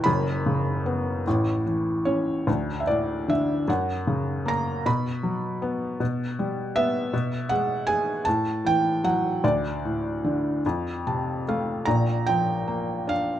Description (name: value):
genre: classical, lyrical solo piano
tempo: 48-54 BPM (dotted quarters)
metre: 6/8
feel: rubato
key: D major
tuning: A4 = 440 Hz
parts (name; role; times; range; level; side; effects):
- felt-muted upright piano; solo; 0.0-13.4 s; F#1 to B5; -23 LUFS; equal; none
room: light reverb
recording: close, detailed microphones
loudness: -23 LUFS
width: side -11 dB against mid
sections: 0.0-2.5 A section; 2.5-11.9 B section; 11.9-13.4 C section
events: felt piano fill 10.6-11.9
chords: 0.1 F#sus4; 1.3 A; 2.5 D5; 3.7 F#; 4.9 B5; 6.0 G/B; 7.1 Eadd9/B; 8.3 A5; 9.4 D5; 10.6 F; 11.9 Bb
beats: | 0.05 1.26 | 2.47 3.68 | 4.85 6.01 | 7.13 8.26 | 9.43 10.64 | 11.86 13.08